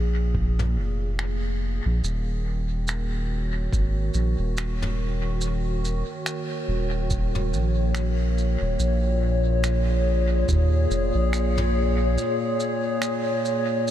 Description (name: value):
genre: ambient dub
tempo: 71 BPM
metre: 4/4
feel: swing 58% on 16ths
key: Eb minor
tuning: A4 = 440 Hz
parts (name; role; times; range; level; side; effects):
- warbly tape-like pad; sustained chords; 0.0-13.9 s; Bb2 to Db5; -27 LUFS; left 1 dB; chorus, built-in reverb
- soft dub sub bass; bass; 0.0-12.2 s; Eb1 to Eb2; -23 LUFS; equal; none
- electronic kick drum; drums; 0.3-10.7 s; none; -27 LUFS; equal; none
- vintage brush drum kit; drums; 0.6-13.9 s; finger snaps, shaker, toms; -35 LUFS; equal; dub echo
room: light reverb, small room reverb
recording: none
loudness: -22 LUFS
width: side -11 dB against mid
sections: 0.0-13.9 A section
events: fade-in on ambient pad 0.0-13.9; break 12.2-13.9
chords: 0.0 Bbm7; 2.0 Ebm7; 8.8 Bbm7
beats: 0.35 1.19 | 2.04 2.88 3.73 4.57 | 5.42 6.26 7.11 7.95 | 8.80 9.64 10.49 11.33 | 12.18 13.02 13.87